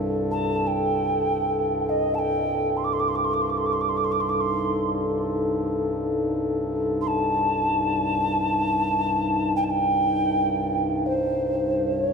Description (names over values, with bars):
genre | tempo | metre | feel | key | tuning
world meditative, free-time meditation music | free time | none | none | C kumoi | A4 = 440 Hz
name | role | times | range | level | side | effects
pedal harmonium | drone | 0.0-12.1 s | C2 to G2 | -28 LUFS | equal | stereo widening
glass harmonica | texture | 0.0-11.7 s | Eb4 to A4 | -28 LUFS | left 2 dB | stereo widening
breathy alto ocarina | melody | 0.3-12.1 s | C5 to D6 | -24 LUFS | right 1 dB | diffuse ambient delay
room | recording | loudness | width
wet church reverb, RT60 2.8 s | none | -22 LUFS | side -5 dB against mid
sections
0.0-12.1 A section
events
none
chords
none